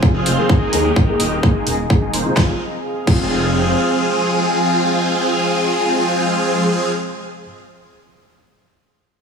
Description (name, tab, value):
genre	EDM, festival progressive house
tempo	128 BPM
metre	4/4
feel	straight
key	F minor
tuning	A4 = 440 Hz
part	felt-muted upright piano	accompaniment	0.0-7.4 s	C3 to Ab4	-24 LUFS	left 3 dB	sidechain pumping, digital delay
part	lush unison pad	sustained chords	0.0-6.7 s	C4 to Bb5	-25 LUFS	equal	chorus, sidechain pumping
part	wide detuned saw bass	bass	0.0-3.7 s	Eb1 to Eb2	-22 LUFS	right 1 dB	chorus, sidechain pumping
part	electronic kick drum	drums	0.0-3.2 s	none	-15 LUFS	equal	overdrive
part	impact	sound effects	0.0-0.5 s	none	barely audible	none	none
part	big supersaw lead	riff	0.1-6.9 s	Eb3 to C5	-18 LUFS	equal	phaser, cassette tape, sidechain pumping, low-pass filter, digital delay
part	big-room dance drum kit	drums	0.3-3.2 s	crash cymbal, hi-hat, snare drum	-24 LUFS	equal	overdrive
room	moderate lush hall reverb, RT60 2.2 s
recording	small room ambience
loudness	-14 LUFS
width	side -6 dB against mid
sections	0.0-2.4 A section; 2.4-6.1 B section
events	impact 0.0-0.5; filter sweep on supersaw synth 0.0-2.4; filter sweep on detuned saw bass 0.0-2.4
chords	0.5 Ebsus4; 2.4 Fm